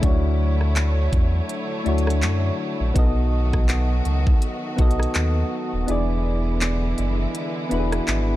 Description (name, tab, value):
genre	contemporary R&B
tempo	82 BPM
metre	4/4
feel	swing 58% on 16ths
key	unclear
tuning	A4 = 440 Hz
part	soft electric-piano-like synth keys	accompaniment	0.0-8.4 s	A3 to D#5	-26 LUFS	left 2 dB	chorus
part	warm studio string section	sustained chords	0.0-8.4 s	D3 to C#5	-30 LUFS	right 1 dB	sidechain pumping
part	sub bass with octave	bass	0.0-8.4 s	D#1 to F#2	-21 LUFS	equal	none
part	trap drum kit	drums	0.0-8.3 s	handclaps, hi-hat, kick drum, rim click	-22 LUFS	equal	none
part	downlifter	sound effects	0.0-3.0 s	none	-47 LUFS	equal	none
room	little or no reverb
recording	dark, warm production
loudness	-19 LUFS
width	side -15 dB against mid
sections	0.0-8.4 A section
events	kick muted 5.9-8.4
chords	0.0 Dmaj9; 3.0 B7; 5.9 E7